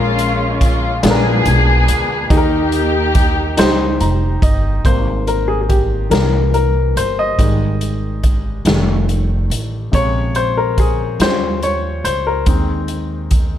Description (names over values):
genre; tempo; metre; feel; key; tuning
slow gospel; 47 BPM (dotted quarters); 6/8; straight; Ab major; A4 = 440 Hz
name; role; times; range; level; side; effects
muted studio string section; melody; 0.0-4.0 s; Ab3 to Ab4; -18 LUFS; left 1 dB; none
clear grand piano; accompaniment; 0.0-13.6 s; Bb2 to Bb5; -18 LUFS; left 3 dB; none
upright bass; bass; 0.0-13.6 s; F1 to Eb2; -18 LUFS; equal; none
swinging big-band drum kit; drums; 0.2-13.5 s; hi-hat, kick drum, snare drum; -17 LUFS; equal; none
room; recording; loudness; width
little or no reverb; none; -13 LUFS; side -11 dB against mid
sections
0.0-4.8 A section; 4.8-13.6 B section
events
grand piano fill 3.6-4.8; grand piano solo 4.8-13.6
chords
0.0 Bbm7; 1.0 Bb7b9; 2.3 Eb; 4.8 Abmaj7; 6.1 C7; 7.4 Ebadd11/Ab; 8.7 F7; 9.9 Bbm7; 11.2 Eb7; 12.5 Ab/Eb